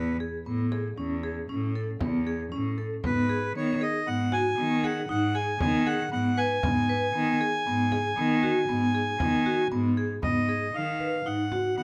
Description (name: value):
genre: contemporary instrumental, chamber music in an uneven meter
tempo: 117 BPM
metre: 7/4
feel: straight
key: G# phrygian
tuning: A4 = 440 Hz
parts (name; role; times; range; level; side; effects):
- accordion; melody; 0.0-11.8 s; B4 to G#5; -31 LUFS; equal; none
- vibraphone with medium hard mallets; arpeggios; 0.0-11.8 s; B3 to B4; -30 LUFS; equal; none
- clear cello; bass; 0.0-11.8 s; E2 to D#3; -33 LUFS; equal; none
- frame drum; percussion; 0.7-11.8 s; none; -36 LUFS; equal; none
room: moderate recital hall reverb, RT60 1.5 s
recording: close, detailed microphones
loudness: -27 LUFS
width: mono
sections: 0.0-10.2 A section; 10.2-11.8 B section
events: none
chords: 0.0 Amaj9; 3.0 G#m7